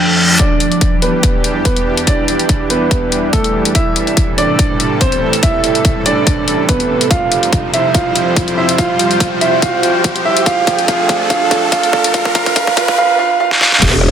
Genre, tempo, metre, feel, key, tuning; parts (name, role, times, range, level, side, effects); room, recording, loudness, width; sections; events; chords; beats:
heavy wobble dubstep; 143 BPM; 4/4; swing 54% on 16ths, half-time; E phrygian; A4 = 440 Hz
warm grand piano; melody; 0.0-13.8 s; A3 to G5; -16 LUFS; right 3 dB; low-pass filter, tape echo
supersaw pad; sustained chords; 0.0-14.1 s; E2 to C5; -20 LUFS; right 1 dB; vintage 12-bit sampler grit, sidechain pumping, low-pass filter
reverse cymbal, riser and impact; sound effects; 0.0-14.1 s; -19 LUFS; equal
deep dark ambient pad; texture; 0.0-14.1 s; F3 to B5; -21 LUFS; equal; chorus, built-in reverb, sidechain pumping
dubstep drum kit; drums; 0.4-13.9 s; crash cymbal, hi-hat, snare drum; -16 LUFS; left 3 dB; soft clipping on snare
electronic kick drum; drums; 0.4-13.9 s; -16 LUFS; equal; overdrive
sludgy distorted guitar; stabs; 13.8-13.9 s; B3 to G4; -19 LUFS; right 3 dB; overdrive
growl bass; bass; 13.8-14.1 s; E1; -12 LUFS; equal; chorus, overdrive
moderate plate reverb, RT60 1.5 s, digital ambience; dense, heavily limited modern master, high-pass filter; -11 LUFS; side -8 dB against mid
0.4-13.8 A section
reverse cymbal 0.0-0.4; build-up 0.4-13.8; riser 0.4-13.0; filter sweep 0.4-13.8; drum fill 7.1-13.0, 13.5-13.8; impact 13.8
0.4 Em7; 3.8 Amadd9; 7.1 Fsus2; 10.5 Dm/F
| 0.39 0.81 1.23 1.65 | 2.07 2.49 2.91 3.33 | 3.75 4.17 4.59 5.01 | 5.43 5.85 6.27 6.69 | 7.11 7.53 7.95 8.37 | 8.79 9.20 9.62 10.04 | 10.46 10.88 11.30 11.72 | 12.14 12.56 12.98 13.40 | 13.82